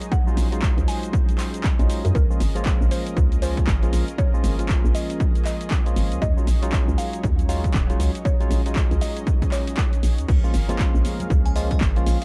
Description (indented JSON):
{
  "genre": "deep house",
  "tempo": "118 BPM",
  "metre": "4/4",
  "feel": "swing 60% on 16ths",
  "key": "Eb dorian",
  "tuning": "A4 = 440 Hz",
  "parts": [
    { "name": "warm analog pad", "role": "sustained chords", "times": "0.0-12.2 s", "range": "Gb3 to F5", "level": "-40 LUFS", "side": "equal", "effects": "chorus, tremolo, sidechain pumping" },
    { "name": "punchy analog drum machine", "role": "drums", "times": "0.0-12.2 s", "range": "cabasa, crash cymbal, handclaps, hi-hat", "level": "-36 LUFS", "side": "equal", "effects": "overdrive" },
    { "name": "ethereal airy pad", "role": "texture", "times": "0.0-12.2 s", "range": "Gb3 to F5", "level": "-40 LUFS", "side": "equal", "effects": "none" },
    { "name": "mallet-like synth pluck", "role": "melody", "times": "0.1-9.9 s", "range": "Bb4 to C6", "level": "-36 LUFS", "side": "equal", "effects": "chorus, phaser, analog delay" },
    { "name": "electronic kick drum", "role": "drums", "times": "0.1-11.9 s", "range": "none", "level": "-23 LUFS", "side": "equal", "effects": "overdrive" },
    { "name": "barky tine electric piano", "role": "stabs", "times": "0.3-12.2 s", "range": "F3 to F4", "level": "-33 LUFS", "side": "equal", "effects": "overdrive, sidechain pumping" },
    { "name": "hollow knocking FM bass", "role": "bass", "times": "0.4-12.2 s", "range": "Eb1 to Gb2", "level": "-25 LUFS", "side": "equal", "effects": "tube saturation, sidechain pumping" },
    { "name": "congas", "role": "percussion", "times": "10.7-11.8 s", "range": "none", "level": "-36 LUFS", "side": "equal", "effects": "none" },
    { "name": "glassy synth bell", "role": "melody", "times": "11.5-12.2 s", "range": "Eb5 to Ab5", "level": "-36 LUFS", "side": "equal", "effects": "chorus, tape echo" }
  ],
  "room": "digital ambience",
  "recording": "dark, warm production",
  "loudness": "-21 LUFS",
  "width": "mono",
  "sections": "0.0-12.2 A section",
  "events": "none",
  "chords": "0.0 Ebm11; 2.1 Db6; 6.2 Ebm11; 10.3 Db6",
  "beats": "| 0.12 0.62 1.13 1.64 | 2.15 2.66 3.17 3.67 | 4.18 4.69 5.20 5.71 | 6.22 6.73 7.24 7.74 | 8.25 8.76 9.27 9.78 | 10.29 10.79 11.30 11.81"
}